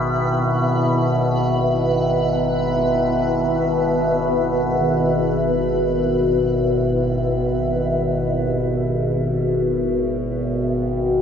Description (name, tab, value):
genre	dark ambient drone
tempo	free time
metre	none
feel	none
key	unclear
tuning	A4 = 441 Hz
part	granular cloud pad	sustained chords	0.0-11.2 s	B4 to E5	-22 LUFS	equal	built-in reverb
part	overtone-sweeping drone	drone	0.0-11.2 s	G#1 to B2	-19 LUFS	left 1 dB	chorus, built-in reverb
part	gamelan-type bossed gongs	arpeggios	4.8-11.2 s	D#3 to G4	-34 LUFS	right 1 dB	none
room	wet cathedral reverb, RT60 5.3 s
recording	in a vast, echoing space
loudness	-17 LUFS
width	side -7 dB against mid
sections	0.0-11.2 A section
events	none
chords	0.0 Em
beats	free time